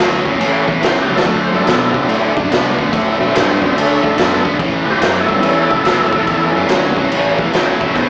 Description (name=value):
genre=blues rock power trio and southern rock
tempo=143 BPM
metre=4/4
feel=swing 66% on 8ths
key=unclear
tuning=A4 = 440 Hz
part: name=overdriven electric guitar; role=riff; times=0.0-8.1 s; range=E2 to B3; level=-19 LUFS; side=equal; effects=slapback echo
part: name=fuzz fingered electric bass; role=bass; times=0.0-8.1 s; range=E1 to C3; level=-23 LUFS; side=equal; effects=overdrive
part: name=raw garage drum kit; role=drums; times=0.0-8.1 s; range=crash cymbal, kick drum, snare drum, toms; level=-19 LUFS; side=equal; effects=none
part: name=overdriven tonewheel organ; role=sustained chords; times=0.8-8.1 s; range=F#3 to G5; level=-21 LUFS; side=equal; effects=slow rotary speaker, chorus vibrato
room=light reverb, small room ambience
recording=live gig heard through the venue's PA, club reverb, small speaker sound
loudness=-14 LUFS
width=mono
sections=0.0-8.1 A section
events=tonewheel organ solo 0.0-8.1; drum fill 1.0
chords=0.0 A7; 1.2 D7; 4.6 A7